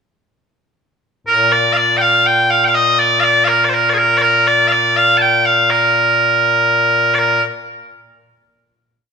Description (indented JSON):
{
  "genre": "scottish traditional, Scottish pipe music",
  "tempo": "81 BPM (dotted quarters)",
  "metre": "6/8",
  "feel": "straight",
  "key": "Bb major",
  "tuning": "A4 = 440 Hz",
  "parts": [
    { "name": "loud bright bagpipes", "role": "solo", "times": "1.3-7.4 s", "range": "Bb2 to A5", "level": "-11 LUFS", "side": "equal", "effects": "none" }
  ],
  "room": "moderate recital hall reverb, RT60 1.6 s",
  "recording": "minimal, uncompressed stereo recording",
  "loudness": "-11 LUFS",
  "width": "side -6 dB against mid",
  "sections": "1.3-7.2 A section; 7.2-8.7 final note",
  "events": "none",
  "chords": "none",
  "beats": "| 1.26 2.00 | 2.74 3.48 | 4.22 4.97 | 5.71 6.45 | 7.19"
}